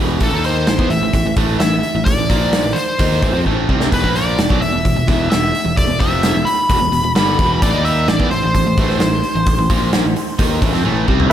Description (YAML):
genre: hard rock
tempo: 130 BPM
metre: 4/4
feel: straight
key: A minor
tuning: A4 = 440 Hz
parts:
  - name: overdriven semi-hollow guitar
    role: riff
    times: 0.0-11.3 s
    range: E2 to D#4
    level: -20 LUFS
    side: right 1 dB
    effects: slapback echo
  - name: overdriven picked electric bass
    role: bass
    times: 0.0-11.3 s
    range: E1 to F2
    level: -20 LUFS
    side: equal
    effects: none
  - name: nasal lead guitar with a parked wah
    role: melody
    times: 0.2-10.8 s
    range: A4 to B5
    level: -20 LUFS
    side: left 1 dB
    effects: overdrive
  - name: big rock drum kit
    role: drums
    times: 0.2-11.3 s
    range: hi-hat, kick drum, snare drum, toms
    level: -18 LUFS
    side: equal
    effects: none
room: light reverb, studio ambience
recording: none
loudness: -13 LUFS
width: side -10 dB against mid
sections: 0.0-11.3 A section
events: drum fill 3.5-3.9, 10.8-11.3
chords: 0.2 Am; 3.9 E5; 7.6 Am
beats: | 0.20 0.67 1.13 1.60 | 2.06 2.53 2.99 3.45 | 3.92 4.38 4.85 5.31 | 5.77 6.23 6.70 7.16 | 7.62 8.08 8.54 9.01 | 9.47 9.93 10.39 10.85 | 11.30